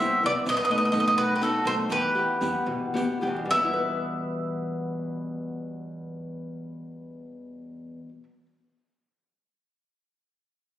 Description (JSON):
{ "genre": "italian folk, Italian serenade", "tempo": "69-86 BPM (dotted quarters)", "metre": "6/8", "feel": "straight", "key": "E minor", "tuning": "A4 = 440 Hz", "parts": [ { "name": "bowl-back mandolin", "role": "melody", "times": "0.0-8.2 s", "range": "A4 to E5", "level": "-25 LUFS", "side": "equal", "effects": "none" }, { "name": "bowl-back mandolin", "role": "second line", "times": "0.0-8.2 s", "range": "B3 to C5", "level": "-36 LUFS", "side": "right 1 dB", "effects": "none" }, { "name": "nylon-string guitar", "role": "accompaniment", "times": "0.0-8.5 s", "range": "E2 to B4", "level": "-30 LUFS", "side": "left 2 dB", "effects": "none" }, { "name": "upright bass", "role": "bass", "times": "0.0-8.2 s", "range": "B1 to E3", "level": "-38 LUFS", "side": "right 1 dB", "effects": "none" }, { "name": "riq", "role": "percussion", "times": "0.0-3.8 s", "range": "none", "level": "-36 LUFS", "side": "right 2 dB", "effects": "none" } ], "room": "wet recital hall reverb, RT60 1.3 s", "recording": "recorded on a phone in the room, club reverb", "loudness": "-24 LUFS", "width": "side -12 dB against mid", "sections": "0.0-3.5 A section; 3.5-6.9 B section", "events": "slowing down 0.5-3.5", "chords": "0.5 B7; 1.9 Em" }